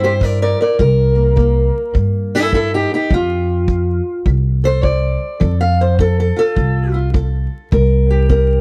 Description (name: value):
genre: acoustic country blues, solo or duo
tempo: 104 BPM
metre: 4/4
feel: swing 64% on 8ths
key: C mixolydian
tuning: A4 = 444 Hz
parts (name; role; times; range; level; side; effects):
- fingerpicked steel-string acoustic guitar; melody; 0.0-8.6 s; G2 to F5; -19 LUFS; equal; none
- upright bass; bass; 0.0-8.6 s; C2 to G2; -18 LUFS; equal; none
- kick drum; drums; 0.2-8.5 s; none; -19 LUFS; equal; none
room: small room reverb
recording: dry, close 1970s-style studio recording, vinyl crackle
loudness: -15 LUFS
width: mono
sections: 0.0-8.6 A section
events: steel-string acoustic guitar solo 0.0-8.6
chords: 0.0 C7; 3.1 F; 7.7 C7(no3)